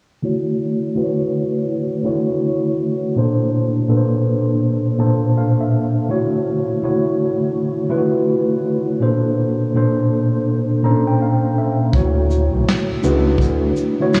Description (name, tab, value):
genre	lo-fi hip hop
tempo	82 BPM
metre	4/4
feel	swing 63% on 16ths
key	D major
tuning	A4 = 441 Hz
part	mellow tine electric piano	accompaniment	0.2-14.2 s	Bb2 to Bb5	-19 LUFS	equal	cassette tape, low-pass filter
part	fat analog bass	bass	11.9-13.7 s	B1 to D2	-20 LUFS	equal	none
part	vintage brush drum kit	drums	11.9-14.2 s	hi-hat, kick drum, shaker, snare drum	-23 LUFS	equal	vintage 12-bit sampler grit
room	wet huge ambient reverb, RT60 8.0 s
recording	dreamy mix soaked in reverb, cassette tape, small room ambience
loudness	-18 LUFS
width	mono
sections	0.2-11.9 A section; 11.9-14.2 B section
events	filter sweep on tine electric piano 0.2-11.9; tine electric piano fill 4.6-6.1, 10.5-11.9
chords	0.2 Dmaj9; 3.2 Bbmaj9; 6.1 Dmaj9; 9.0 Bbmaj9; 11.9 Dmaj9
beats	| 0.23 0.96 1.69 2.42 | 3.15 3.89 4.62 5.35 | 6.08 6.81 7.54 8.28 | 9.01 9.74 10.47 11.20 | 11.93 12.67 13.40 14.13